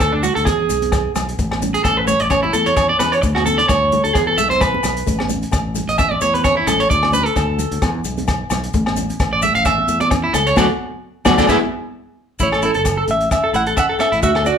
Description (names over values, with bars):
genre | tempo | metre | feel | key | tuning
highlife guitar band | 131 BPM | 4/4 | swing 55% on 16ths | A major | A4 = 441 Hz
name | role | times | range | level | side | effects
nylon-string guitar | accompaniment | 0.0-14.6 s | F#3 to E4 | -26 LUFS | left 6 dB | none
electric guitar at the edge of break-up | arpeggios | 0.0-14.5 s | D4 to F5 | -17 LUFS | right 2 dB | none
modern bright fingered electric bass | bass | 0.0-14.5 s | F#1 to E2 | -23 LUFS | left 1 dB | none
vintage drum kit | drums | 0.0-14.6 s | hi-hat, kick drum, rim click, snare drum | -22 LUFS | left 1 dB | none
agogo bells | percussion | 0.0-14.5 s | none | -26 LUFS | left 2 dB | none
maracas | percussion | 0.0-14.6 s | none | -32 LUFS | left 7 dB | none
congas | percussion | 0.2-11.6 s | none | -28 LUFS | right 5 dB | none
semi-hollow electric guitar | melody | 12.4-14.6 s | A4 to F#5 | -18 LUFS | right 1 dB | none
room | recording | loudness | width
moderate large studio reverb, RT60 0.8 s | band playing live in one room | -14 LUFS | side -7 dB against mid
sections
0.0-12.4 A section; 12.4-14.6 B section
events
clean electric guitar solo 0.0-12.4; band accent 10.6-12.4; drum fill 12.2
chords
0.5 E; 1.4 A; 3.2 D5; 4.2 E; 5.1 A; 6.9 D5; 7.8 E; 8.7 A; 10.6 D; 11.5 E; 12.4 A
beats
0.00 0.47 0.93 | 1.39 1.85 2.31 2.77 | 3.23 3.69 4.15 4.61 | 5.07 5.53 5.99 6.45 | 6.91 7.36 7.82 8.28 | 8.74 9.20 9.65 10.11 | 10.57 11.03 11.48 11.94 | 12.40 12.86 13.32 13.77 | 14.23